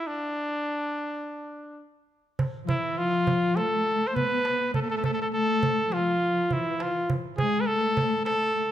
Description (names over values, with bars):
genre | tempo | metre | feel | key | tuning
Arabic maqam ensemble | 102 BPM | 4/4 | straight | unclear | A4 = 441 Hz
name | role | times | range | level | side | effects
clear trumpet | melody | 0.0-8.7 s | D4 to C5 | -26 LUFS | equal | none
darbuka | percussion | 2.4-8.4 s | none | -30 LUFS | right 2 dB | none
dark studio cello section | second line | 2.6-8.7 s | E3 to B3 | -29 LUFS | left 2 dB | none
room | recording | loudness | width
moderate recital hall reverb, RT60 1.7 s | none | -24 LUFS | side -11 dB against mid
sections
0.0-2.4 A section; 2.4-8.7 B section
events
none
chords
none